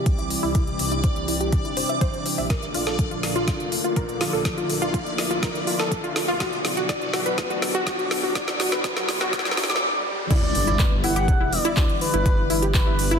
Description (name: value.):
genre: progressive house.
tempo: 123 BPM.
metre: 4/4.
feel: straight.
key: G major.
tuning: A4 = 444 Hz.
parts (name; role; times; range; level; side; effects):
lush unison pad; sustained chords; 0.0-13.2 s; B2 to G4; -30 LUFS; left 1 dB; chorus, sidechain pumping.
riser, noise sweep and impact; sound effects; 0.2-12.3 s; none; -33 LUFS; equal; none.
backwards swelling texture; texture; 0.0-13.2 s; D5 to D6; -34 LUFS; equal; built-in reverb, sidechain pumping.
dark detuned saw bass; bass; 0.1-13.2 s; E1 to D2; -30 LUFS; equal; sidechain pumping.
deep house drum kit; drums; 0.1-13.2 s; crash cymbal, handclaps, hi-hat, snare drum; -27 LUFS; left 1 dB; none.
electronic kick drum; drums; 0.1-12.8 s; none; -22 LUFS; equal; none.
wide unison pluck; arpeggios; 0.2-13.2 s; E4 to D6; -26 LUFS; equal; sidechain pumping, tape echo.
expressive synth lead; melody; 10.3-13.2 s; B4 to F#5; -26 LUFS; equal; chorus, sidechain pumping, dub echo.
room: moderate recital hall reverb, RT60 1.3 s, digital ambience.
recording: dense, heavily limited modern master, high-pass filter.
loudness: -20 LUFS.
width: side -6 dB against mid.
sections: 0.0-10.3 A section; 10.3-13.2 B section.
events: build-up 0.0-10.3; filter sweep on synth pluck 0.0-10.3; filter sweep 0.0-10.3; riser 0.2-10.3; drum fill 2.5-9.8; noise sweep 8.4-10.3; drop 10.3-13.2; impact 10.3-12.3.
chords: 0.0 C; 2.5 Bbmaj7; 6.4 Bm; 10.3 G6.